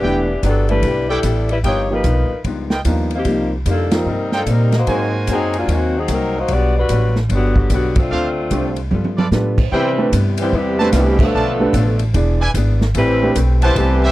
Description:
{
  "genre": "jazz, big band swing",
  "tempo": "148 BPM",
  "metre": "4/4",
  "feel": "swing 64% on 8ths",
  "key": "C major from 9.7 s",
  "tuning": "A4 = 440 Hz",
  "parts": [
    { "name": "dark saxophone section", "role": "melody", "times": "0.0-14.1 s", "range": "D3 to D5", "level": "-19 LUFS", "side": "left 2 dB", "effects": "none" },
    { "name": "archtop guitar, miked and amplified", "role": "accompaniment", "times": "0.0-14.1 s", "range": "G2 to B4", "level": "-26 LUFS", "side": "left 5 dB", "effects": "none" },
    { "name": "warm concert grand piano", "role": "accompaniment", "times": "0.0-6.0, 8.5-13.4 s", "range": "E3 to D5", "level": "-21 LUFS", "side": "right 2 dB", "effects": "none" },
    { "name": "bright trumpet section", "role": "stabs", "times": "0.0-14.1 s", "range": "D4 to A5", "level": "-22 LUFS", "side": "right 3 dB", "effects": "none" },
    { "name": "upright bass", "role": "bass", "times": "0.0-14.1 s", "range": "E1 to C3", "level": "-18 LUFS", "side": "equal", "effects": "none" },
    { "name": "swinging big-band drum kit", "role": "drums", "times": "0.4-13.9 s", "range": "crash cymbal, hi-hat, kick drum, ride cymbal, snare drum, toms", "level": "-22 LUFS", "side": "equal", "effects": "none" },
    { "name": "brilliant trombone section", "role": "second line", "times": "9.7-14.1 s", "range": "B2 to C4", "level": "-22 LUFS", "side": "right 3 dB", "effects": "none" }
  ],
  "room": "little or no reverb",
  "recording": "dry, close 1970s-style studio recording",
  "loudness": "-14 LUFS",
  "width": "side -16 dB against mid",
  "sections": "0.0-9.7 A section; 9.7-14.1 B section",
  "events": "band accent 3.9, 7.9, 11.1; drum fill 8.9-9.3",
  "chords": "0.0 Em7; 1.6 G7alt; 3.3 Cm7; 4.9 Ab9; 6.5 Gmaj7; 8.1 Dm7; 8.9 G9; 9.7 Cmaj7; 11.3 Bm7b5; 12.2 E7; 13.0 Am9"
}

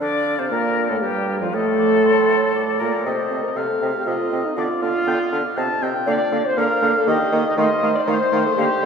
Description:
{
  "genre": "quick classical-period movement for wind quintet",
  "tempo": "119 BPM",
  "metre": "3/4",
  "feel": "straight",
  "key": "Bb major",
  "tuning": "A4 = 439 Hz",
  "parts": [
    { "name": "bright concert flute", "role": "melody", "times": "0.0-8.9 s", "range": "F4 to F5", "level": "-26 LUFS", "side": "left 4 dB", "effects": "none" },
    { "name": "warm oboe", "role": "second line", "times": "0.0-8.9 s", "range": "C5 to A5", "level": "-25 LUFS", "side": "left 2 dB", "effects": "none" },
    { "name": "dark clarinet", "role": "accompaniment", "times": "0.0-8.9 s", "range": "F3 to D4", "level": "-26 LUFS", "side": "right 6 dB", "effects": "none" },
    { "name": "mellow French horn", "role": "accompaniment", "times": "0.0-8.9 s", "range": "Eb4 to Eb5", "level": "-22 LUFS", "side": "equal", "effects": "none" },
    { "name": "mellow bassoon", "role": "bass", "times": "0.0-8.9 s", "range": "F2 to Eb3", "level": "-25 LUFS", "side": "right 2 dB", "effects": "none" }
  ],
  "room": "wet cathedral reverb, RT60 4.6 s",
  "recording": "recorded in a church or concert hall",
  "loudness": "-17 LUFS",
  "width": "side -6 dB against mid",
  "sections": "0.0-8.9 A section",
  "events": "none",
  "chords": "0.0 Bb; 1.5 Am; 2.6 Bb; 3.1 Cm; 4.6 Bdim/D; 5.6 C5; 6.1 Bb/D; 7.1 Eb; 7.6 F7/Eb (rootless)"
}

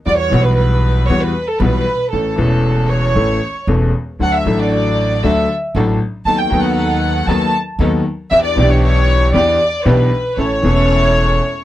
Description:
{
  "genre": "tango",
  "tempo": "116 BPM",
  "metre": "4/4",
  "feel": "rubato",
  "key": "unclear",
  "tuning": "A4 = 441 Hz",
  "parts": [
    { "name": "warm studio violin section", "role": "second line", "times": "0.1-11.6 s", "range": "A4 to A5", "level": "-17 LUFS", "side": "equal", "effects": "none" },
    { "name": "bright grand piano", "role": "accompaniment", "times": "0.1-11.4 s", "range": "E1 to A4", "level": "-17 LUFS", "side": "left 2 dB", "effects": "none" },
    { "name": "upright bass", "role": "bass", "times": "0.1-11.4 s", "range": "E1 to E2", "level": "-17 LUFS", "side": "right 1 dB", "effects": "none" },
    { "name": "warm symphonic string section", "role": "stabs", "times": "4.2-11.4 s", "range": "B3 to A4", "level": "-24 LUFS", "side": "right 7 dB", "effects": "none" }
  ],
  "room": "light reverb",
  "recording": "dry, close 1970s-style studio recording",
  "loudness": "-12 LUFS",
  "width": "side -14 dB against mid",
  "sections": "0.0-11.6 A section",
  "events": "violin section solo 0.0-11.6; stop 11.4",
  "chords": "0.1 Emadd9; 2.1 A; 4.2 D; 6.3 B7/D#; 8.3 Em7; 10.4 A"
}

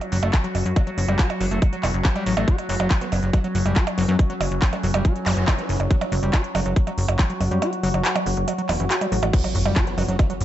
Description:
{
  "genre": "psychedelic trance",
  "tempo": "140 BPM",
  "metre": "4/4",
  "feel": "straight",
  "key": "F# phrygian",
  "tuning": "A4 = 440 Hz",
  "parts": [
    { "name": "overtone-sweeping drone", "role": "sustained chords", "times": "0.0-10.4 s", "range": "F#3 to F#4", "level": "-28 LUFS", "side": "equal", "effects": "chorus, built-in reverb, vintage 12-bit sampler grit, sidechain pumping" },
    { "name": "techno drum kit", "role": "drums", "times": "0.0-10.4 s", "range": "crash cymbal, handclaps, hi-hat, percussion blips", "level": "-27 LUFS", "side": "right 3 dB", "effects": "overdrive" },
    { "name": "overdriven acid bass", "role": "riff", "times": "0.1-10.3 s", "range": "E3 to F#4", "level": "-28 LUFS", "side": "left 1 dB", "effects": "auto-pan, cassette tape, sidechain pumping, digital delay" },
    { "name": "plucky analog bass", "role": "bass", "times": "0.1-10.4 s", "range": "E1 to F#2", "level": "-23 LUFS", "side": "equal", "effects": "none" },
    { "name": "electronic kick drum", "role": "drums", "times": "0.3-10.3 s", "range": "none", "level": "-19 LUFS", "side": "equal", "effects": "none" },
    { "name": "formant-sweep wobble bass", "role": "second line", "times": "3.0-5.8, 9.9-10.3 s", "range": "E3 to B3", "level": "-37 LUFS", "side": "right 3 dB", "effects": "chorus, sidechain pumping, high-pass filter, digital delay" },
    { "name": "zap and impact", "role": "sound effects", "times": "5.3-5.4, 9.3-10.4 s", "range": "none", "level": "-30 LUFS", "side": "equal", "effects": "none" }
  ],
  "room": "light reverb",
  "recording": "nothing above 8.0 kHz",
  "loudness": "-19 LUFS",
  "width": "side -12 dB against mid",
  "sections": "0.0-9.3 A section; 9.3-10.4 B section",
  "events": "kick drops out 7.6-9.3; drop 9.3-10.4; impact 9.3-10.4",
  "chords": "0.0 F#5"
}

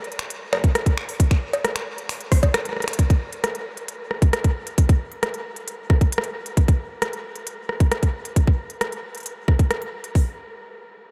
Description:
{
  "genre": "IDM",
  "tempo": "134 BPM",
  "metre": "4/4",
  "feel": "straight",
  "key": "none",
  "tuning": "none",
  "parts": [
    { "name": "organic electronic drum kit", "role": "drums", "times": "0.0-10.1 s", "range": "cowbell, finger snaps, hi-hat, rim click", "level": "-29 LUFS", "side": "equal", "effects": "diffuse ambient delay" },
    { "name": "organic electronic drum kit", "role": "drums", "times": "0.6-10.3 s", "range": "hi-hat, kick drum", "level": "-19 LUFS", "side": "equal", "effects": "none" }
  ],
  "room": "light reverb",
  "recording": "none",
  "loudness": "-22 LUFS",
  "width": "mono",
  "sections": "0.0-3.0 A section; 3.0-10.2 B section",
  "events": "drum fill 2.8",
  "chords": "none"
}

